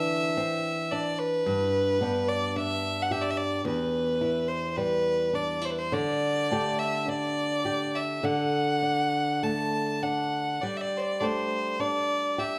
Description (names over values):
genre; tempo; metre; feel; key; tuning
celtic folk, Celtic slow air; 50-55 BPM; 4/4; rubato; G major; A4 = 439 Hz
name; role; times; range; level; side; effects
rich fiddle; melody; 0.0-12.6 s; B4 to A5; -30 LUFS; equal; none
flamenco guitar; accompaniment; 0.0-12.6 s; E2 to G4; -32 LUFS; equal; none
room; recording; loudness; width
moderate large studio reverb, RT60 1.2 s; band playing live in one room; -28 LUFS; mono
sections
0.0-12.6 A section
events
none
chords
0.0 Cadd9; 1.5 G; 3.7 Em; 5.9 Dsus4; 8.2 D; 10.6 Gsus2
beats
0.36 | 1.46 2.56 3.65 4.78 | 5.92 7.07 8.23 9.42 | 10.62 11.80